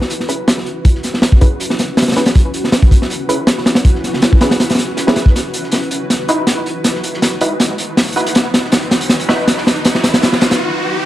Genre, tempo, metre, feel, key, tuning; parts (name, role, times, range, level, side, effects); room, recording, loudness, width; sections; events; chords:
drum and bass, jungle; 160 BPM; 4/4; straight; A4 = 441 Hz
soft dub sub bass; bass; 0.0-10.6 s; barely audible
crunchy breakbeat drum kit; drums; 0.0-10.6 s; hi-hat, kick drum, snare drum; -12 LUFS; equal
crunchy breakbeat drum kit; drums; 0.1-10.5 s; hi-hat, snare drum; -27 LUFS; equal; high-pass filter on hats, high-pass filter on snare, high-pass filter on room
filtered dub chord stab; stabs; 0.3-9.4 s; C#4 to B4; -20 LUFS; right 1 dB; chorus, dub echo
riser; sound effects; 7.0-11.1 s; -23 LUFS; right 1 dB
light reverb, studio reverb; vinyl crackle; -11 LUFS; side -14 dB against mid
0.0-11.1 A section
build-up 0.0-11.1; filter sweep on synth stab 0.0-11.1; drum fill 5.4-10.6; riser 7.0-11.1; break 10.6-11.1
0.0 F#7sus4; 5.4 Emaj9